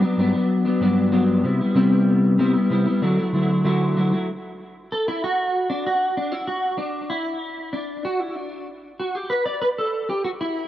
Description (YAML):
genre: indie pop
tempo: 95 BPM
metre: 4/4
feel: straight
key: D mixolydian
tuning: A4 = 440 Hz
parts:
  - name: clean electric guitar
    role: solo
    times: 0.0-10.7 s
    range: G2 to D5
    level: -19 LUFS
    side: equal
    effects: ensemble chorus, vibrato effect, tape echo
room: moderate spring reverb, RT60 2.6 s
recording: worn, warbling old tape, cassette tape, warbly pitch drift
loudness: -19 LUFS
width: side -13 dB against mid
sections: 0.0-4.3 A section; 4.3-10.7 B section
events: clean electric guitar solo 4.3-10.7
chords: 0.0 Gmaj7; 1.4 Cmaj7; 3.0 Dadd9; 4.3 N.C.